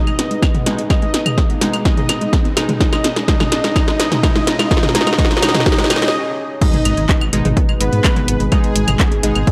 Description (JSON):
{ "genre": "melodic techno", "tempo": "126 BPM", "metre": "4/4", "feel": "straight", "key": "G# minor", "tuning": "A4 = 440 Hz", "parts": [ { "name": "analog synth brass", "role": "melody", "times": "0.0-9.5 s", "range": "G#3 to D#4", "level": "-27 LUFS", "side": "equal", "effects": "chorus, sidechain pumping, analog delay" }, { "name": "soft supersaw", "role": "second line", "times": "0.0-9.5 s", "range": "G#4 to D#5", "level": "-28 LUFS", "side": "equal", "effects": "cassette tape, sidechain pumping, analog delay" }, { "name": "dark analog pad", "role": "sustained chords", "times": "0.0-9.5 s", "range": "G#3 to D#5", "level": "-31 LUFS", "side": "equal", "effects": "none" }, { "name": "synth brass stab", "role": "stabs", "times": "0.0-9.5 s", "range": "B2 to D#4", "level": "-28 LUFS", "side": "equal", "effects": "chorus, sidechain pumping, analog delay" }, { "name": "riser and impact", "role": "sound effects", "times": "0.3-8.5 s", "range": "none", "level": "-29 LUFS", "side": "equal", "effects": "none" }, { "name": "tight sequenced synth", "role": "arpeggios", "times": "0.1-9.5 s", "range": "G#3 to B3", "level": "-29 LUFS", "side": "equal", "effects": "none" }, { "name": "deep house drum kit", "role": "drums", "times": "0.1-9.5 s", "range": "claves, crash cymbal, handclaps, hi-hat, snare drum, toms", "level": "-21 LUFS", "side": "equal", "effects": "overdrive" }, { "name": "dark detuned saw bass", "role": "bass", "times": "0.2-9.4 s", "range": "G#1 to G#2", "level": "-23 LUFS", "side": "equal", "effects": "tube saturation, sidechain pumping, high-pass filter" }, { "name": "electronic kick drum", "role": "drums", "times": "0.4-9.5 s", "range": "none", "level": "-18 LUFS", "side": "equal", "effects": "none" }, { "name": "analog drone", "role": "drone", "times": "8.2-9.5 s", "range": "B2", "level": "-34 LUFS", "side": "equal", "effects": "none" } ], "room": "light reverb, digital ambience", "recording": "dry, gritty hardware recording, transformer saturation", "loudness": "-16 LUFS", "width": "mono", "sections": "0.0-6.6 A section; 6.6-9.5 B section", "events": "build-up 0.0-6.6; drum fill 0.0-6.1; filter sweep on analog polysynth 0.0-6.6; filter sweep on supersaw synth 0.0-6.6; break 6.1-6.6; drop 6.6-9.5; impact 6.6-8.5", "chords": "0.0 G#m; 2.8 C#5; 6.6 G#m" }